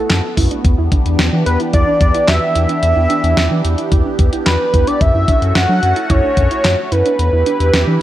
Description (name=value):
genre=synth-pop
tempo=110 BPM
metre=4/4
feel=straight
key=E dorian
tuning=A4 = 439 Hz
part: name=fat analog lead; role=melody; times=0.0-8.0 s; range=A4 to F#5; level=-16 LUFS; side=right 1 dB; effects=none
part: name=phased analog pad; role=sustained chords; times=0.0-8.0 s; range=E3 to B4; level=-21 LUFS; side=equal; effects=phaser, chorus
part: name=soft round pluck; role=arpeggios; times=0.0-8.0 s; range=C#4 to F#4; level=-24 LUFS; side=right 5 dB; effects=chorus, tape echo
part: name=round analog bass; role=bass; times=0.1-8.0 s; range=E2 to F#3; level=-16 LUFS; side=equal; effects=none
part: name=clean 12-bit digital drum machine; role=drums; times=0.1-7.9 s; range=handclaps, hi-hat, kick drum, snare drum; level=-16 LUFS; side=equal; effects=none
room=light reverb, digital ambience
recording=none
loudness=-12 LUFS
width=side -13 dB against mid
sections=0.0-8.0 A section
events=none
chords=0.0 F#m; 0.6 Em7; 5.0 F#m; 7.2 Em7